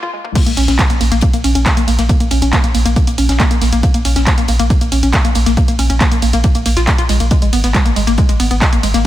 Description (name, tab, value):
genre	driving peak-time techno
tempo	138 BPM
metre	4/4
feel	straight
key	Bb phrygian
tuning	A4 = 441 Hz
part	warbly dusty pluck	riff	0.0-9.0 s	Ab3 to F4	-18 LUFS	left 1 dB	chorus, sidechain pumping, tape echo
part	punchy analog drum machine	drums	0.0-9.0 s	crash cymbal, handclaps, hi-hat, ride cymbal, toms	-19 LUFS	right 1 dB	none
part	compact cocktail drum kit	drums	0.4-9.0 s	hi-hat, snare drum	-30 LUFS	left 4 dB	sidechain pumping on hats, high-pass filter on hats, high-pass filter on snare, high-pass filter on room
part	electronic kick drum	drums	0.4-8.7 s	none	-14 LUFS	equal	high-pass filter on kick, high-pass filter on room
part	warm sub bass	bass	0.5-9.0 s	Ab1 to Bb1	-16 LUFS	equal	tube saturation, sidechain pumping, low-pass filter
room	little or no reverb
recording	high-pass filter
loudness	-11 LUFS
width	side -14 dB against mid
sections	0.4-9.1 A section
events	break 0.0-0.4; drum fill 0.0-0.4; drop 0.4-9.1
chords	none